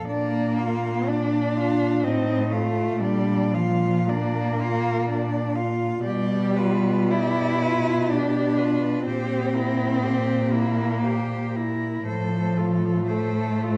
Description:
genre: classical, lyrical piece for cello ensemble.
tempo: 60 BPM.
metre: 3/4.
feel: uneven beats, rubato.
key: C major from 6.0 s.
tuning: A4 = 440 Hz.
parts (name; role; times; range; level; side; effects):
clear cello; melody; 0.0-13.8 s; A4 to F5; -35 LUFS; equal; none.
rich cello; second line; 0.0-13.8 s; D4 to A4; -31 LUFS; equal; none.
rich cello; bass; 0.0-13.8 s; A2 to B2; -28 LUFS; equal; none.
rich cello; accompaniment; 0.1-13.8 s; F3 to E4; -27 LUFS; equal; none.
room: wet recital hall reverb, RT60 1.4 s.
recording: dark, warm production.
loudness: -23 LUFS.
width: mono.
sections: 0.0-13.8 A section.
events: none.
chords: 0.1 Bb; 2.0 F7/A; 3.0 Bb; 6.0 G7/B; 9.1 C7/Bb; 12.1 F/A.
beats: | 0.07 1.07 2.04 | 3.00 4.09 5.08 | 6.04 7.11 8.10 | 9.06 10.02 11.03 | 12.06 13.08.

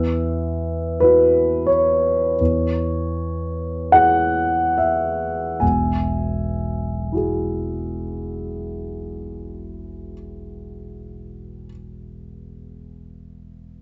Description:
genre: classical, impressionist solo piano.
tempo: 34-49 BPM.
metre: 4/4.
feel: rubato.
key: E major.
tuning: A4 = 441 Hz.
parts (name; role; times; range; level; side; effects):
warm grand piano; solo; 0.0-13.8 s; E1 to G#5; -21 LUFS; equal; none.
room: moderate studio reverb, RT60 0.8 s.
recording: dark, warm production, nothing above 7.7 kHz.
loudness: -20 LUFS.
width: mono.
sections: 0.0-5.6 A section; 5.6-11.8 B section.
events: slowing down 0.0-5.6.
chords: 0.0 Esus2; 2.4 C#m/E; 5.6 Eadd9.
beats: 1.02 2.39 3.93 | 5.61 7.12 8.64 10.21.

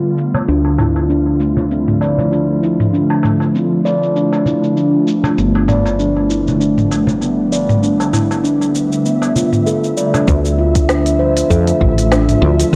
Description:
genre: organic downtempo.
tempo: 98 BPM.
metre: 4/4.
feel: swing 56% on 16ths.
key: D dorian.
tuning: A4 = 435 Hz.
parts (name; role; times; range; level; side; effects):
ethereal airy pad; sustained chords; 0.0-12.8 s; D3 to E5; -20 LUFS; equal; ensemble chorus, built-in reverb, sidechain pumping.
woody fretless electric bass; bass; 0.0-12.8 s; G1 to F2; -20 LUFS; equal; sidechain pumping.
organic electronic drum kit; drums; 0.2-12.8 s; hi-hat, shaker, snare drum, toms; -22 LUFS; equal; low-pass filter on perc, low-pass filter on toms, low-pass filter on hats, low-pass filter on snare.
darbuka; percussion; 0.3-10.3 s; none; -26 LUFS; equal; none.
steel tongue drum; arpeggios; 0.5-12.8 s; A3 to D5; -19 LUFS; equal; analog delay.
electronic kick drum; drums; 10.3-12.8 s; none; -17 LUFS; equal; none.
room: light reverb, digital ambience.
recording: dry, gritty hardware recording, low-pass filter.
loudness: -15 LUFS.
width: mono.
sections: 0.0-10.3 A section; 10.3-12.8 B section.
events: filter sweep on drum 0.0-10.3; filter sweep 0.0-10.3.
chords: 0.5 Dmadd9; 5.4 G9; 10.3 Dmadd9.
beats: | 0.48 1.10 1.71 2.32 | 2.93 3.55 4.16 4.77 | 5.38 6.00 6.61 7.22 | 7.83 8.44 9.06 9.67 | 10.28 10.89 11.51 12.12 | 12.73.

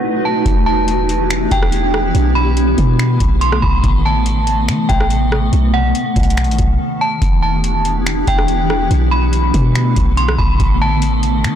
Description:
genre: hip hop, atmospheric cloud-rap.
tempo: 142 BPM.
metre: 4/4.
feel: half-time.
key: E minor.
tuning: A4 = 440 Hz.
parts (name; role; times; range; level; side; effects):
metallic FM bell; melody; 0.0-11.6 s; F#5 to C6; -20 LUFS; right 1 dB; chorus, phaser, low-pass filter, tape echo.
granular cloud pad; sustained chords; 0.0-11.6 s; B2 to B4; -18 LUFS; equal; built-in reverb, sidechain pumping.
clean 808-style bass; bass; 0.5-11.6 s; E1 to E3; -16 LUFS; equal; none.
booming analog drum machine; drums; 0.5-11.5 s; finger snaps, hi-hat, kick drum, rim click; -18 LUFS; equal; soft clipping on snare.
room: little or no reverb.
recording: blown-out, overdriven recording, overdrive, low-pass filter.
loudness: -12 LUFS.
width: side -9 dB against mid.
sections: 0.5-11.6 A section.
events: break 6.8-7.2.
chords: 0.5 Em7; 2.1 Bm7; 3.8 Amadd9; 5.5 B7; 7.2 Em7; 8.9 Bm7; 10.6 Amadd9.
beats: 0.04 | 0.46 0.88 1.30 1.73 | 2.15 2.57 2.99 3.42 | 3.84 4.26 4.68 5.11 | 5.53 5.95 6.37 6.79 | 7.22 7.64 8.06 8.48 | 8.91 9.33 9.75 10.18 | 10.60 11.02 11.44.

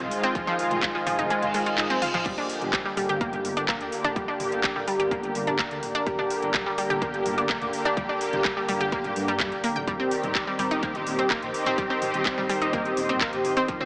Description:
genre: melodic techno.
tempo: 126 BPM.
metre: 4/4.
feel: straight.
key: G phrygian.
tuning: A4 = 438 Hz.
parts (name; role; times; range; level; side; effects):
deep dark ambient pad; sustained chords; 0.0-13.9 s; F4 to C6; -30 LUFS; equal; chorus, built-in reverb, sidechain pumping.
brassy analog pad; stabs; 0.0-13.9 s; D3 to G4; -28 LUFS; equal; ensemble chorus, sidechain pumping, dub echo.
dark detuned saw bass; bass; 0.0-13.8 s; D1 to G2; -36 LUFS; equal; sidechain pumping.
house drum kit; drums; 0.0-13.9 s; crash cymbal, handclaps, hi-hat, toms; -30 LUFS; equal; none.
analog pluck; arpeggios; 0.2-13.9 s; F3 to G6; -28 LUFS; equal; chorus, sidechain pumping, dub echo.
electronic kick drum; drums; 0.4-13.8 s; none; -32 LUFS; equal; none.
reverse cymbal; sound effects; 1.4-2.3 s; none; -34 LUFS; equal; none.
room: moderate lush hall reverb, RT60 2.1 s.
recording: small speaker sound.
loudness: -23 LUFS.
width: side -29 dB against mid.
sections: 0.0-13.9 A section.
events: reverse cymbal 1.4-2.3; drum fill 1.9-2.3.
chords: 0.0 Fm7; 2.3 Gm; 9.9 Eb6.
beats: | 0.35 0.83 1.30 1.78 | 2.26 2.73 3.21 3.69 | 4.16 4.64 5.11 5.59 | 6.07 6.54 7.02 7.49 | 7.97 8.45 8.92 9.40 | 9.88 10.35 10.83 11.30 | 11.78 12.26 12.73 13.21 | 13.69.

